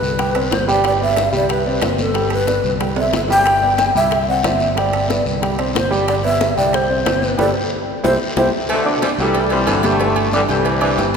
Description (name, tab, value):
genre	latin, salsa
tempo	183 BPM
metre	4/4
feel	straight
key	G major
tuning	A4 = 440 Hz
part	mellow hollow long shakuhachi	melody	0.0-8.5 s	A4 to G5	-18 LUFS	left 1 dB	none
part	dark concert grand piano	accompaniment	0.0-11.2 s	G3 to G6	-20 LUFS	right 2 dB	none
part	fingered electric bass	bass	0.0-11.2 s	G1 to C2	-23 LUFS	right 1 dB	none
part	congas	percussion	0.0-11.2 s	none	-28 LUFS	left 1 dB	none
part	guiro	percussion	0.0-11.2 s	none	-31 LUFS	left 3 dB	none
part	bongos and cowbell	percussion	0.2-11.2 s	none	-27 LUFS	left 5 dB	none
part	timbales and agogo bells	percussion	0.2-11.2 s	none	-28 LUFS	right 3 dB	none
part	bright trombone section	melody	8.7-11.1 s	B2 to A3	-19 LUFS	left 1 dB	none
part	clear saxophone section	second line	8.7-11.1 s	D3 to A3	-22 LUFS	left 2 dB	none
room	wet church reverb, RT60 3.3 s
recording	recorded in a church or concert hall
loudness	-14 LUFS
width	side -6 dB against mid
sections	0.0-8.7 A section; 8.7-11.2 B section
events	drum fill 3.0-3.5, 7.9-8.7; band accent 7.4-8.7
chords	0.2 Csus2; 0.8 G; 1.5 Csus2; 2.2 G; 2.8 Csus2; 3.5 G; 4.1 Cadd9; 4.8 G; 5.4 Csus2; 6.1 G; 6.7 Csus2; 7.4 Gadd9; 8.0 C; 8.7 Gadd9; 9.4 Cadd9; 10.0 Gsus2